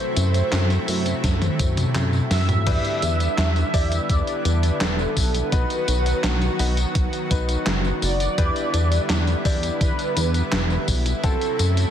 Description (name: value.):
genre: synthwave.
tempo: 84 BPM.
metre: 4/4.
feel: straight.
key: E minor.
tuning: A4 = 440 Hz.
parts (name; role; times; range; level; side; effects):
mellow synth brass; melody; 0.0-11.9 s; A4 to E5; -28 LUFS; right 1 dB; chorus, phaser, ping-pong delay.
lush unison pad; sustained chords; 0.0-11.9 s; C3 to F#4; -28 LUFS; right 1 dB; chorus, sidechain pumping.
chorused synth bass; bass; 0.2-11.9 s; E1 to F#2; -22 LUFS; equal; sidechain pumping.
gated 80s digital drum machine; drums; 0.2-11.9 s; crash cymbal, handclaps, hi-hat, snare drum, tambourine, toms; -26 LUFS; equal; gated reverb, gated reverb snare.
electronic kick drum; drums; 1.2-11.4 s; none; -23 LUFS; equal; none.
bright grand piano; stabs; 2.7-11.9 s; B3 to D5; -31 LUFS; left 6 dB; tape echo.
room: light reverb, digital ambience.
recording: dense, heavily limited modern master.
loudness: -19 LUFS.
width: side -9 dB against mid.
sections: 0.0-11.9 A section.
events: drum fill 1.2-2.7.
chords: 0.0 F#m7b5; 2.7 Em7; 5.5 B; 8.4 Em7; 11.2 F#m7b5.